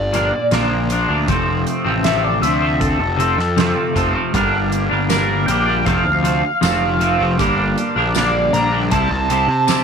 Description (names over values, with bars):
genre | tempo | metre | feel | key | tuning
psychedelic rock | 78 BPM | 4/4 | straight | unclear | A4 = 441 Hz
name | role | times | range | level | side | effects
overdriven synth lead | melody | 0.0-9.8 s | A4 to Bb5 | -20 LUFS | equal | distortion, phaser, slapback echo
fuzz picked electric bass | bass | 0.0-9.8 s | F1 to C3 | -21 LUFS | left 1 dB | overdrive
twelve-string electric guitar | riff | 0.1-9.8 s | F2 to E4 | -18 LUFS | equal | harmonic tremolo, double-tracked left and right
soft-mallet drum kit | drums | 0.1-9.8 s | hi-hat, kick drum, snare drum | -24 LUFS | right 4 dB | none
tambourine | percussion | 5.1-9.8 s | none | -27 LUFS | left 20 dB | none
room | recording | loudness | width
light reverb | 1960s-style stereo | -15 LUFS | side -6 dB against mid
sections
0.0-9.8 A section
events
none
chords
0.0 Bb; 1.3 F; 4.3 Gm; 5.9 F; 7.4 Gm; 8.9 C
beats
0.52 | 1.28 2.04 2.81 3.57 | 4.33 5.10 5.86 6.63 | 7.39 8.16 8.92 9.69